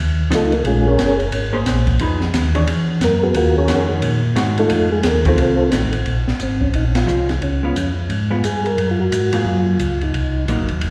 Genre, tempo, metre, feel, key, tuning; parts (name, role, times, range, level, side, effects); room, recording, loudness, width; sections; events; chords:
soul jazz organ trio; 177 BPM; 4/4; swing 62% on 8ths; Bb minor; A4 = 442 Hz
mellow tonewheel organ; bass; 0.0-10.9 s; F1 to Bb2; -22 LUFS; equal; chorus vibrato, slow rotary speaker
percussive tonewheel organ; melody; 0.3-10.5 s; Ab3 to Db5; -21 LUFS; equal; slow rotary speaker, chorus vibrato, plate reverb, slapback echo
vintage hollow-body jazz guitar; accompaniment; 0.3-10.7 s; Eb3 to Db5; -26 LUFS; equal; plate reverb, slapback echo
open jazz drum kit; drums; 0.3-10.9 s; hi-hat, kick drum, ride cymbal, snare drum; -26 LUFS; equal
moderate club reverb, RT60 0.8 s; live gig heard through the venue's PA, recital hall reverb; -18 LUFS; mono
0.0-6.1 A section; 6.1-10.9 B section
tonewheel organ solo 0.0-6.1; band accent 6.9
0.0 Faug7; 0.6 Bbm9; 2.0 Fm7b5; 2.7 Esus2; 3.4 Ebm11; 4.7 F7; 6.1 Bbm7; 7.4 Db7; 8.8 Gbmaj9; 10.1 Cm7b5